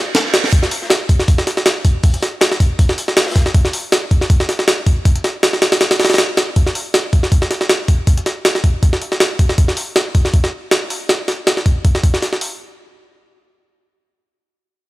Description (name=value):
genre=drum and bass, jungle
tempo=159 BPM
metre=4/4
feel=swing 54% on 16ths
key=none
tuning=none
part: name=reverse cymbal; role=sound effects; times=0.0-0.5 s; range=none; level=-24 LUFS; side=right 5 dB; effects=none
part: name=jungle sampler-style drum kit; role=drums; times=0.1-12.5 s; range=hi-hat, kick drum, snare drum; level=-13 LUFS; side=equal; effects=small room ambience
part: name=crunchy breakbeat drum kit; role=drums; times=0.2-3.5 s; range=hi-hat, snare drum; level=-28 LUFS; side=left 3 dB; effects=none
room=small room ambience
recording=dry, gritty hardware recording, transformer saturation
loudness=-13 LUFS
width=side -18 dB against mid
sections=0.0-12.6 A section; 12.6-14.9 B section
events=reverse cymbal 0.0-0.5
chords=none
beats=0.15 | 0.53 0.90 1.28 1.66 | 2.04 2.41 2.79 3.17 | 3.54 3.92 4.30 4.68 | 5.05 5.43 5.81 6.19 | 6.56 6.94 7.32 7.70 | 8.07 8.45 8.83 9.21 | 9.58 9.96 10.34 10.71 | 11.09 11.47 11.85 12.22